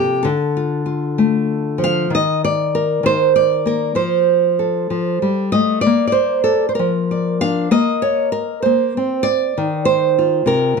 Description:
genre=folk, solo fingerstyle acoustic guitar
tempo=65 BPM (dotted quarters)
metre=6/8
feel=rubato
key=Bb major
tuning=A4 = 440 Hz
part: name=nylon-string guitar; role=solo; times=0.0-10.8 s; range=C3 to F5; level=-15 LUFS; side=equal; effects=none
room=light reverb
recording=dark, warm production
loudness=-15 LUFS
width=side -5 dB against mid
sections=0.0-10.8 A section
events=none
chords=0.3 Dm; 2.1 Eb5; 4.0 F; 5.9 Bb; 7.7 Bbsus24; 9.5 Ebsus2

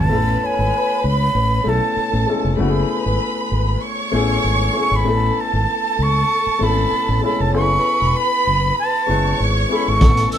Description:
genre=lush 1970s-style soul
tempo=97 BPM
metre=4/4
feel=swing 54% on 16ths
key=A major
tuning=A4 = 444 Hz
part: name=breathy concert flute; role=melody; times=0.0-10.4 s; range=G#5 to E6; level=-19 LUFS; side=right 2 dB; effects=none
part: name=warm studio violin section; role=second line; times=0.0-10.4 s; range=A4 to C#6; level=-23 LUFS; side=right 1 dB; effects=none
part: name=warm grand piano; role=accompaniment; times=0.0-10.4 s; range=G#3 to B4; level=-23 LUFS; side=left 5 dB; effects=none
part: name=fingered electric bass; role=bass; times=0.0-10.2 s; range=E1 to C#2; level=-20 LUFS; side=equal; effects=none
part: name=vibraphone with soft mallets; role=texture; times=0.0-2.4, 7.2-7.8 s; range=B4 to F#5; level=-30 LUFS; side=right 5 dB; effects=none
part: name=vintage drum kit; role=drums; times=10.0-10.4 s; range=hi-hat, kick drum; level=-16 LUFS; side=equal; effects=none
part: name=congas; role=percussion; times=10.0-10.4 s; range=none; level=barely audible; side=none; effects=none
room=moderate studio reverb, RT60 0.5 s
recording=band playing live in one room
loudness=-15 LUFS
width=side -10 dB against mid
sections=0.1-10.4 A section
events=none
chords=0.1 Amaj7; 2.6 F#m11 (rootless); 5.1 Amaj7; 7.5 F#m11

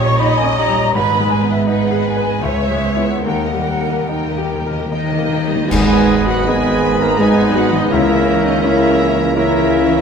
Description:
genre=classical, romantic movement for piano and orchestra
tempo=72-85 BPM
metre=3/4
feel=rubato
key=G# minor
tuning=A4 = 440 Hz
part: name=clear concert grand piano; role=melody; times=0.0-10.0 s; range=G#1 to C#5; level=-20 LUFS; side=left 1 dB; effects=none
part: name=warm symphonic violin section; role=melody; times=0.0-10.0 s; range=B4 to B5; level=-30 LUFS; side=left 4 dB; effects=none
part: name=flute section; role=second line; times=0.0-10.0 s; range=D#5 to C#6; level=-23 LUFS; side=equal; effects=none
part: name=rich symphonic violin section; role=second line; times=0.0-10.0 s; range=A#3 to A#5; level=-26 LUFS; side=left 3 dB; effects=none
part: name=warm symphonic viola section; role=accompaniment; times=0.0-10.0 s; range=B3 to D#5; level=-23 LUFS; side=right 1 dB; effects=none
part: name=warm symphonic cello section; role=bass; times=0.0-10.0 s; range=C#2 to A#3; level=-22 LUFS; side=right 4 dB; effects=none
part: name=warm symphonic double bass section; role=bass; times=0.0-10.0 s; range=G#1 to D#2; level=-25 LUFS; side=right 5 dB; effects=none
part: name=timpani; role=percussion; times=0.9-5.7 s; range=G#2 to D#3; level=-26 LUFS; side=left 2 dB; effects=none
part: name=cymbal swell, clash cymbals and concert bass drum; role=percussion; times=1.0-7.1 s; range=none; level=-25 LUFS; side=equal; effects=none
part: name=dark clarinet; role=second line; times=4.9-10.0 s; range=D#4 to A#4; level=-20 LUFS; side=left 2 dB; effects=none
part: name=warm oboe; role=second line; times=5.7-10.0 s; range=D#5 to E5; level=-26 LUFS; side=right 2 dB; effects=none
part: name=clear bassoon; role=accompaniment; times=5.7-10.0 s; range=A#3 to B3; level=-23 LUFS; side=right 1 dB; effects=none
part: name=bright trombone section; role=sustained chords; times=5.7-10.0 s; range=C#3 to A#3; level=-24 LUFS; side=right 5 dB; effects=none
part: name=mellow French horn section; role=sustained chords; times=5.7-10.0 s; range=B3 to E4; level=-23 LUFS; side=left 6 dB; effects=none
part: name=mellow trumpet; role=stabs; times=5.7-10.0 s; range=A#4 to B4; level=-22 LUFS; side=left 1 dB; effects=none
part: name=clear tuba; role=bass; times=5.7-10.0 s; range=G#1 to C#2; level=-24 LUFS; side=right 5 dB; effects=none
room=moderate concert hall reverb, RT60 1.9 s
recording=none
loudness=-13 LUFS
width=side -6 dB against mid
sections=0.0-5.7 A section; 5.7-10.0 B section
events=timpani fill 3.2-5.7; band accent 5.7-6.5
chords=0.0 D#7/A#; 0.9 G#m; 2.4 C#m7; 3.2 D#; 5.7 G#m; 7.9 A#dim/C#

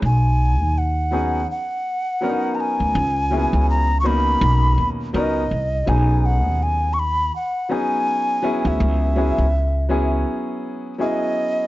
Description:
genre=hip hop, jazz-hop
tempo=82 BPM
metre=4/4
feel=swing 58% on 16ths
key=B major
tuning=A4 = 439 Hz
part: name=upright bass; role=bass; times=0.0-10.2 s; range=B1 to D#2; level=-19 LUFS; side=equal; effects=none
part: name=mellow alto ocarina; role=melody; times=0.1-11.7 s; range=D#5 to C#6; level=-22 LUFS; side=equal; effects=none
part: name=warm grand piano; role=accompaniment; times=1.1-11.7 s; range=F#3 to A#4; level=-24 LUFS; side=left 1 dB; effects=none
room=studio reverb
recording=dry, gritty hardware recording, nothing above 7.6 kHz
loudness=-18 LUFS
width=side -17 dB against mid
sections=0.0-5.9 A section; 5.9-11.7 A section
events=none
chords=0.0 B6; 3.0 F#9sus4/C#; 4.4 Bmaj9; 5.9 B6; 8.8 F#9sus4/C#

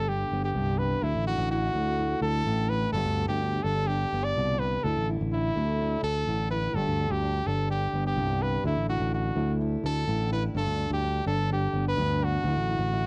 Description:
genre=highlife guitar band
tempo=126 BPM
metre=4/4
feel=straight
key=G major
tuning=A4 = 439 Hz
part: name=brilliant trumpet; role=melody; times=0.0-13.1 s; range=E4 to D5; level=-32 LUFS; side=equal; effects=cassette tape
part: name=fingerpicked steel-string acoustic guitar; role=accompaniment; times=0.0-13.1 s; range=G2 to G4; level=-34 LUFS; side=equal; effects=cassette tape
part: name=fingered electric bass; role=bass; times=0.0-13.1 s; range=G1 to D2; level=-31 LUFS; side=equal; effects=none
room=light reverb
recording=home recording on cassette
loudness=-28 LUFS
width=mono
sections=0.0-13.1 A section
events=none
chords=0.0 G; 1.0 Dadd9; 2.9 G; 4.8 Dsus2; 6.7 G; 8.6 Dadd9; 10.5 G; 12.4 Dadd9

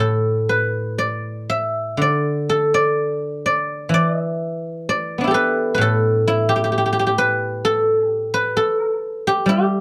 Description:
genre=chinese traditional, Chinese solo plucked strings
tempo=59-65 BPM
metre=4/4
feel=rubato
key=D zhi mode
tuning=A4 = 440 Hz
part: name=guzheng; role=solo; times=0.0-9.8 s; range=A2 to E5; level=-20 LUFS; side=equal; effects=none
room=moderate small room reverb, RT60 0.5 s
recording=dark, warm production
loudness=-20 LUFS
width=mono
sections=0.0-9.8 A section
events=none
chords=none

